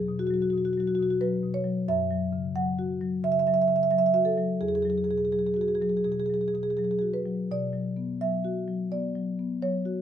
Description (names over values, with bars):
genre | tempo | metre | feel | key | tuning
classical, contemporary piece for solo marimba | 86 BPM | 4/4 | rubato | unclear | A4 = 440 Hz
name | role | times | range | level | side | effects
marimba with soft mallets | solo | 0.0-10.0 s | E2 to F#5 | -24 LUFS | equal | none
room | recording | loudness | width
moderate stone room reverb, RT60 1.1 s | none | -24 LUFS | side -9 dB against mid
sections
0.0-10.0 A section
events
none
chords
0.0 Esus2; 1.9 F#5; 4.6 Eadd9; 7.5 Bmadd9